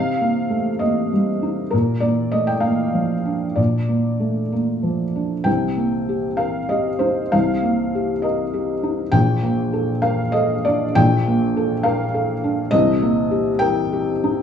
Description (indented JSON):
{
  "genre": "neoclassical minimalist piano",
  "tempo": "62-69 BPM (dotted quarters)",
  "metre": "6/8",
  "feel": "rubato",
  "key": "C dorian",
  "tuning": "A4 = 440 Hz",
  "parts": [
    { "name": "felt-muted upright piano", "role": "solo", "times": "0.0-14.4 s", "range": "Bb1 to G5", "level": "-17 LUFS", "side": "equal", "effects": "none" }
  ],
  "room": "moderate studio reverb, RT60 0.9 s",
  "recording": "band playing live in one room, studio reverb",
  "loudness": "-17 LUFS",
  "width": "side -8 dB against mid",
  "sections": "0.0-5.5 A section; 5.5-14.4 B section",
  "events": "none",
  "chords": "0.0 Cm7; 1.7 Bbmaj7; 5.5 Cm7; 9.1 Bbmaj7; 12.7 Cm7",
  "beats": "0.81 | 1.73 2.64 | 3.58 4.53 | 5.46 6.38 | 7.33 8.24 | 9.13 10.03 | 10.96 11.85 | 12.73 13.61"
}